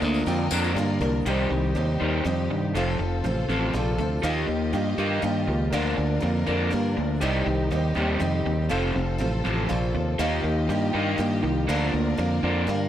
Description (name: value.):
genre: folk rock and heartland rock.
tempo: 121 BPM.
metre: 3/4.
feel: straight.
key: C dorian.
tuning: A4 = 441 Hz.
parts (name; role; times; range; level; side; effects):
picked twelve-string acoustic guitar; accompaniment; 0.0-12.9 s; C3 to Bb4; -31 LUFS; left 3 dB; none.
warm concert grand piano; accompaniment; 0.0-12.9 s; G4 to G5; -34 LUFS; right 4 dB; none.
warm studio string section; sustained chords; 0.0-12.9 s; Eb4 to Eb5; -35 LUFS; left 1 dB; none.
crunchy overdriven guitar; riff; 0.0-12.9 s; F2 to Eb4; -27 LUFS; right 1 dB; none.
modern bright fingered electric bass; bass; 0.0-12.9 s; F1 to G2; -26 LUFS; equal; none.
tambourine; percussion; 0.0-0.8 s; none; -38 LUFS; left 10 dB; none.
room: light reverb, studio reverb.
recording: none.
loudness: -22 LUFS.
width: side -11 dB against mid.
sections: 0.0-1.3 A section; 1.3-12.9 B section.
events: none.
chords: 0.0 Bb/D; 1.3 Cm; 2.7 F; 4.2 Ebadd9; 5.7 Bb/D; 7.2 Cm; 8.7 F; 10.2 Ebadd9; 11.7 Bb/D.